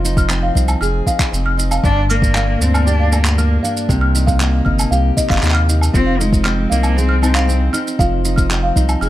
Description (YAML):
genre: folktronica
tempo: 117 BPM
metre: 4/4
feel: straight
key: F dorian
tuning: A4 = 440 Hz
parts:
  - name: fingerpicked steel-string acoustic guitar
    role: arpeggios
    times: 0.0-9.1 s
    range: G2 to Ab4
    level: -21 LUFS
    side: equal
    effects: ping-pong delay
  - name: warm sub bass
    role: bass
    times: 0.0-9.1 s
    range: F1 to Eb2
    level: -16 LUFS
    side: equal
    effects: none
  - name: shaker, handclaps and woodblock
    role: drums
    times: 0.1-9.1 s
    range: none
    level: -22 LUFS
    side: right 1 dB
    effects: none
  - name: folk marimba with soft mallets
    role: second line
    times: 0.2-9.1 s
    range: Eb5 to F6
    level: -23 LUFS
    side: equal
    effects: ping-pong delay
  - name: electronic kick drum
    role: drums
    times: 0.2-8.9 s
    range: none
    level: -17 LUFS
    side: equal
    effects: none
  - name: dark cello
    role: melody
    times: 1.8-7.7 s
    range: Ab3 to D4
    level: -21 LUFS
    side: left 2 dB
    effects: ping-pong delay
room: small room ambience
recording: none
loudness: -13 LUFS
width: side -14 dB against mid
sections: 0.0-9.1 A section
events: none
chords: 0.0 Fm7; 1.8 Gm7; 3.9 Cm7; 5.9 Fm7